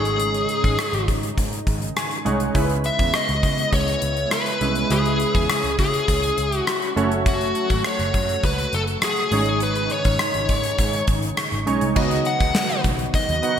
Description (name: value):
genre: 1980s-style pop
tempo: 102 BPM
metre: 4/4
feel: straight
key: C# minor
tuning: A4 = 443 Hz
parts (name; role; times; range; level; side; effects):
- smooth overdriven lead guitar; melody; 0.0-13.6 s; F#4 to F#5; -23 LUFS; left 2 dB; none
- glassy digital keys; accompaniment; 0.0-13.6 s; G#2 to C#6; -26 LUFS; right 3 dB; chorus
- lush unison pad; sustained chords; 0.0-13.6 s; C#3 to F#4; -31 LUFS; right 1 dB; chorus
- vintage muted picked electric bass; bass; 0.0-13.4 s; F#1 to C#3; -26 LUFS; equal; none
- gated 80s drum kit; drums; 0.1-13.6 s; crash cymbal, hi-hat, kick drum, rim click, snare drum; -24 LUFS; equal; gated reverb
room: moderate lush hall reverb, RT60 1.7 s, small room reverb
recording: bright 1980s-style digital production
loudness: -19 LUFS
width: side -8 dB against mid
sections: 0.0-12.0 A section; 12.0-13.6 B section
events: synth keys fill 1.7-2.6, 6.4-7.3, 11.1-12.0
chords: 0.0 G#sus4; 2.6 C#m7; 7.0 F#m; 9.3 G#sus4; 12.0 B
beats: | 0.20 0.79 1.38 1.96 | 2.55 3.14 3.73 4.32 | 4.91 5.49 6.08 6.67 | 7.26 7.85 8.43 9.02 | 9.61 10.20 10.79 11.38 | 11.96 12.55 13.14